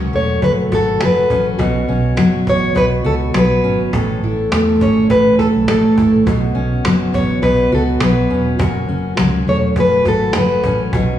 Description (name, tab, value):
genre	acoustic pop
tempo	103 BPM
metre	4/4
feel	swing 55% on 16ths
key	unclear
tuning	A4 = 440 Hz
part	fingerpicked steel-string acoustic guitar	accompaniment	0.0-11.2 s	F#2 to A4	-16 LUFS	equal	none
part	vintage muted fingered electric bass	bass	0.0-11.2 s	E1 to E2	-20 LUFS	right 1 dB	none
part	cajon	drums	0.0-11.2 s	none	-24 LUFS	right 1 dB	none
part	fingerpicked plugged-in steel-string acoustic guitar	melody	0.2-10.8 s	A4 to C#5	-17 LUFS	left 1 dB	none
room	moderate scoring stage reverb, RT60 1.9 s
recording	recorded in a church or concert hall, studio ambience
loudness	-12 LUFS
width	side -11 dB against mid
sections	0.0-11.2 A section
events	none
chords	0.0 F#m; 1.6 Bsus2; 3.9 A; 6.3 Bsus2; 8.6 F#m